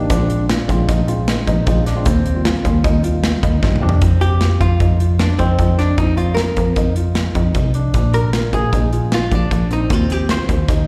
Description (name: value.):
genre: progressive instrumental, band music in an uneven meter.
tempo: 153 BPM.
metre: 5/4.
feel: straight.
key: unclear.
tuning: A4 = 440 Hz.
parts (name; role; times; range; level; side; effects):
tine electric piano; accompaniment; 0.0-4.0 s; G3 to G4; -26 LUFS; equal; slapback echo.
dark baby grand piano; arpeggios; 0.0-10.8 s; C4 to F4; -28 LUFS; equal; slapback echo.
plucky analog bass; bass; 0.0-10.9 s; Bb1 to G2; -19 LUFS; equal; none.
modern studio drum kit; drums; 0.1-10.8 s; hi-hat, kick drum, snare drum, toms; -22 LUFS; equal; none.
egg shaker; percussion; 0.1-3.2 s; none; -43 LUFS; equal; none.
archtop guitar, miked and amplified; melody; 4.2-10.7 s; C4 to C5; -24 LUFS; equal; slapback echo.
room: light reverb, small room ambience.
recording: live gig heard through the venue's PA, recital hall reverb.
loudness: -16 LUFS.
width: mono.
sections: 0.0-4.0 A section; 4.0-10.9 B section.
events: drum fill 3.6-4.0.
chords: 0.1 Bb7; 2.1 Eb6; 4.0 F7(no3); 7.9 Bb7.